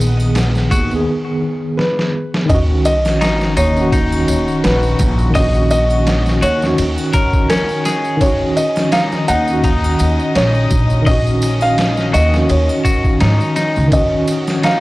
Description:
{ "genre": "trip hop", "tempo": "84 BPM", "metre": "4/4", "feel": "swing 55% on 16ths", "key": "Eb minor", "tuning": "A4 = 441 Hz", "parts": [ { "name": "tine electric piano", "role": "accompaniment", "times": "0.0-14.8 s", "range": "Eb3 to Ab4", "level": "-19 LUFS", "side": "equal", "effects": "overdrive, medium stereo tremolo, tape echo" }, { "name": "warm studio string section", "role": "sustained chords", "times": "0.0-14.8 s", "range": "Eb3 to Eb6", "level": "-25 LUFS", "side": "equal", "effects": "none" }, { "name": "upright bass", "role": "bass", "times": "0.0-13.9 s", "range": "Bb1 to Ab2", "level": "-16 LUFS", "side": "equal", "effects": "tube saturation" }, { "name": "tambourine and triangle", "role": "percussion", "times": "0.0-14.8 s", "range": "none", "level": "-32 LUFS", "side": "right 2 dB", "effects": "none" }, { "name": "trip hop sampler-style drum kit", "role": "drums", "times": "0.4-14.8 s", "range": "hi-hat, kick drum, ride cymbal, snare drum", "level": "-19 LUFS", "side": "equal", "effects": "small room ambience" }, { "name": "semi-hollow electric guitar", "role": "arpeggios", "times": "0.7-14.8 s", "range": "Db4 to Eb5", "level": "-23 LUFS", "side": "left 2 dB", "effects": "spring reverb, tape echo" }, { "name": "felt-muted upright piano", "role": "melody", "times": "1.8-14.8 s", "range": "Bb4 to Gb5", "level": "-19 LUFS", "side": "equal", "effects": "tape echo" }, { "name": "sub drop", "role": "sound effects", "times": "2.5-5.4 s", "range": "none", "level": "-21 LUFS", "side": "equal", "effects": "none" } ], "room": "studio ambience", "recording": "dry, gritty hardware recording, transformer saturation, cassette tape", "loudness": "-12 LUFS", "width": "side -19 dB against mid", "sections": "0.0-2.5 A section; 2.5-14.8 B section", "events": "break 1.1-2.5; drum fill 1.8-2.5; impact 2.5-5.4", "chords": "0.0 Abm; 2.5 Ebm7" }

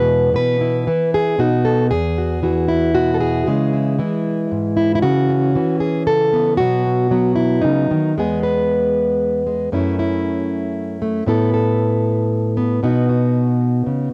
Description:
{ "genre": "folk, solo fingerstyle acoustic guitar", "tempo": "116 BPM", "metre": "3/4", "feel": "straight", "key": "E major", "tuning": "A4 = 440 Hz", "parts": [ { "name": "fingerpicked plugged-in steel-string acoustic guitar", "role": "solo", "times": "0.0-14.1 s", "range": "E2 to B4", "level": "-18 LUFS", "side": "equal", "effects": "cassette tape" } ], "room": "light reverb", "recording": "home recording on cassette", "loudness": "-18 LUFS", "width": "mono", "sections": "0.0-8.2 A section; 8.2-14.1 B section", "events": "none", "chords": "0.3 Bsus4; 1.4 B; 1.9 Eadd9; 3.5 C#m; 5.0 Aadd9/C#; 6.6 B; 8.2 E; 9.7 F#m7; 11.3 Asus2; 12.8 B" }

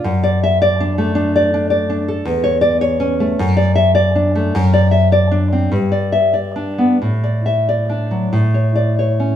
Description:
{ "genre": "romantic piece for solo classical guitar", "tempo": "44-55 BPM (dotted quarters)", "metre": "6/8", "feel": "rubato", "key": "D major", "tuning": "A4 = 440 Hz", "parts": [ { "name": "nylon-string guitar", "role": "solo", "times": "0.0-9.4 s", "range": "E2 to E5", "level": "-13 LUFS", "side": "left 1 dB", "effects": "none" } ], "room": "moderate stone room reverb, RT60 1.2 s", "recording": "band playing live in one room, small room ambience", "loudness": "-13 LUFS", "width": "side -10 dB against mid", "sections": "0.0-9.4 A section", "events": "none", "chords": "0.0 D/F#; 2.3 A/E; 3.4 D/F#; 4.5 D7/F#; 5.7 G; 7.0 D/A; 8.3 A" }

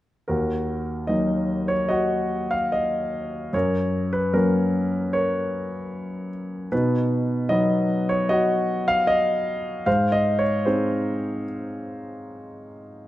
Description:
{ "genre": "classical, lyrical solo piano", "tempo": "74 BPM", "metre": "4/4", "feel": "rubato", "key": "Eb minor", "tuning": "A4 = 439 Hz", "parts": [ { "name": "warm grand piano", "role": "solo", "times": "0.3-13.1 s", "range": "Eb2 to F5", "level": "-21 LUFS", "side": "equal", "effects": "none" } ], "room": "moderate recital hall reverb, RT60 1.4 s", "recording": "none", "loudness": "-21 LUFS", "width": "side -14 dB against mid", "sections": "0.3-13.1 A section", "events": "none", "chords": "0.3 Ebm; 3.5 Gb; 6.7 B; 9.9 Ab" }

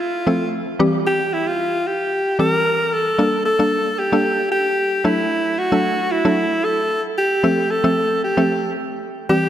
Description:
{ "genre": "pop", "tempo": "113 BPM", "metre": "4/4", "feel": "straight", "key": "G dorian", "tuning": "A4 = 439 Hz", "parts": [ { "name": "edgy alto saxophone", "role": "melody", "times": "0.0-9.5 s", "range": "E4 to Bb4", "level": "-18 LUFS", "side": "equal", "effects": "tape echo" }, { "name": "mallet-like synth pluck", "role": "accompaniment", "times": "0.3-9.5 s", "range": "E3 to A4", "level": "-20 LUFS", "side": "left 1 dB", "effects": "chorus" } ], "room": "wet lush hall reverb, RT60 2.8 s", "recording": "dreamy mix soaked in reverb", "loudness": "-16 LUFS", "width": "side -11 dB against mid", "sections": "0.0-3.2 A section; 3.2-9.5 B section", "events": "build-up 3.2-9.5", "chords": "0.0 F; 0.8 C/E; 3.2 Gmadd9; 5.0 D/F#; 7.4 F" }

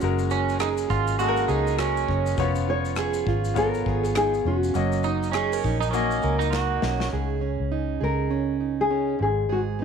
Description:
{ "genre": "acoustic pop", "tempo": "101 BPM", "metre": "4/4", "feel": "swing 60% on 16ths", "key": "F# major", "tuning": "A4 = 439 Hz", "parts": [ { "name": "nylon-string guitar", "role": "melody", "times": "0.0-9.8 s", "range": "F#4 to C#5", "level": "-26 LUFS", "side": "left 4 dB", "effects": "none" }, { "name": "bright upright piano", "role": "accompaniment", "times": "0.0-7.1 s", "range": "G#3 to D#5", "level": "-30 LUFS", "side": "left 14 dB", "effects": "none" }, { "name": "fingerpicked plugged-in steel-string acoustic guitar", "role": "accompaniment", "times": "0.0-9.8 s", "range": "G#2 to A#4", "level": "-28 LUFS", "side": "right 10 dB", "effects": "none" }, { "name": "vintage muted fingered electric bass", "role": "bass", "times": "0.0-9.8 s", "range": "E#1 to C#2", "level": "-27 LUFS", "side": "left 1 dB", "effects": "none" }, { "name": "modern studio drum kit", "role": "drums", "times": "0.0-7.1 s", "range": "kick drum, rim click, shaker, snare drum", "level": "-35 LUFS", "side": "left 6 dB", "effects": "none" }, { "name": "pedal steel guitar", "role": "second line", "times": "0.3-7.1 s", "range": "C#4 to F#4", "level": "-27 LUFS", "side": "right 10 dB", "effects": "none" }, { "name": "group handclap", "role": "percussion", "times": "0.6-6.7 s", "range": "none", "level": "-38 LUFS", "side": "right 13 dB", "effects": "none" } ], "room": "light reverb, small room ambience", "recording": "1960s-style stereo with parts hard left and right", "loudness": "-22 LUFS", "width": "side -6 dB against mid", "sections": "0.0-7.1 A section; 7.1-9.8 B section", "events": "drum fill 6.5-7.1", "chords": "0.0 F#add9; 2.4 C#7/E#; 4.8 F#6; 7.1 C#sus2; 9.2 G#5" }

